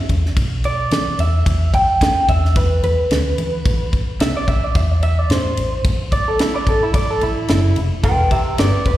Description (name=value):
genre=straight-eighth soul blues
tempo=110 BPM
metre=4/4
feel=swing 55% on 16ths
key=E minor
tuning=A4 = 439 Hz
part: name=electric guitar through a small old amp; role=second line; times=0.0-9.0 s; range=E4 to G5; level=-20 LUFS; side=right 1 dB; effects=slapback echo
part: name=vintage muted fingered electric bass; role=bass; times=0.1-9.0 s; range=E1 to E3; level=-18 LUFS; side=equal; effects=none
part: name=tight funk drum kit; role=drums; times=0.1-9.0 s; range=kick drum, ride cymbal, snare drum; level=-20 LUFS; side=equal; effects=none
room=studio reverb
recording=live gig heard through the venue's PA, recital hall reverb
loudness=-15 LUFS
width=side -14 dB against mid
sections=0.0-9.0 A section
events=clean electric guitar solo 0.0-9.0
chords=0.0 E5; 3.7 A5; 8.0 Em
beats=0.37 0.92 | 1.46 2.01 2.56 3.11 | 3.65 4.20 4.75 5.30 | 5.85 6.39 6.94 7.49 | 8.04 8.58